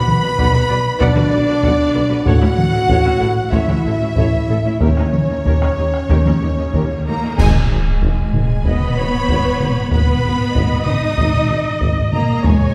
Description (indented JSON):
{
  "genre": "cinematic, epic orchestral film score",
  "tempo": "95 BPM",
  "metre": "4/4",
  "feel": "straight",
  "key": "G# minor from 7.4 s",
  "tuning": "A4 = 439 Hz",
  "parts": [
    { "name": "warm symphonic violin section", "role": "melody", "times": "0.0-12.7 s", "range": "C#5 to D#6", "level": "-29 LUFS", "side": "equal", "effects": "none" },
    { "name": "mellow hollow silver concert flute", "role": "second line", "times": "0.0-7.0 s", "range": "C#5 to B5", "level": "-28 LUFS", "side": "equal", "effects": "none" },
    { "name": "warm symphonic violin section", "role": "second line", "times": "0.0-12.7 s", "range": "G#4 to B5", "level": "-30 LUFS", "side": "equal", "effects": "none" },
    { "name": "dark French horn section", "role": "sustained chords", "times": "0.0-12.7 s", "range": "G#3 to B4", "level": "-25 LUFS", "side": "equal", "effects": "none" },
    { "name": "solo taiko drums", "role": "drums", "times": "0.1-12.7 s", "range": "none", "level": "-21 LUFS", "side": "equal", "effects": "none" },
    { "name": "warm symphonic viola section", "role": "accompaniment", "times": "0.2-12.7 s", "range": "C#4 to F#5", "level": "-28 LUFS", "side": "equal", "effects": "none" },
    { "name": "warm symphonic cello section", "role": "bass", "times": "0.2-12.7 s", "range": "D#2 to D#4", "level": "-26 LUFS", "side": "equal", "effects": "none" },
    { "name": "dark symphonic double bass section", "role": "bass", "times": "0.4-12.5 s", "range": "G#1 to E2", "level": "-25 LUFS", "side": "equal", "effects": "none" },
    { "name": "mellow tuba", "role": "bass", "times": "0.4-12.5 s", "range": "E1 to D#2", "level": "-26 LUFS", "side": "equal", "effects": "none" },
    { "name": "cymbal swell, clash cymbals and concert bass drum", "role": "percussion", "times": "4.8-8.6 s", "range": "none", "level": "-24 LUFS", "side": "equal", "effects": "none" }
  ],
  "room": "wet scoring stage reverb, RT60 1.9 s",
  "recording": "heard from further back in the room",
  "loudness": "-16 LUFS",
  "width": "mono",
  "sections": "0.0-7.4 A section; 7.4-12.7 B section",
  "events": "band accent 7.4-8.0",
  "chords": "0.0 Bm; 2.3 A; 4.8 D#7; 7.4 G#m"
}